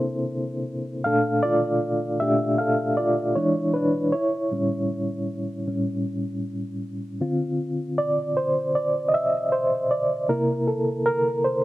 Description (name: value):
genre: R&B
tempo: 78 BPM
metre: 4/4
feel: swing 64% on 16ths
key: D minor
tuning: A4 = 440 Hz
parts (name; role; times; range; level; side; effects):
- mellow reed electric piano; solo; 0.0-11.6 s; A2 to F5; -22 LUFS; equal; fast tremolo
room: little or no reverb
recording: recorded outdoors, with no room sound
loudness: -22 LUFS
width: side -16 dB against mid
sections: 0.0-7.2 A section; 7.2-11.6 B section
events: reed electric piano solo 0.0-7.2, 7.2-11.6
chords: 0.0 C9; 1.0 Bbmaj7; 3.3 E7; 4.1 A7; 7.2 Dm7; 10.3 C7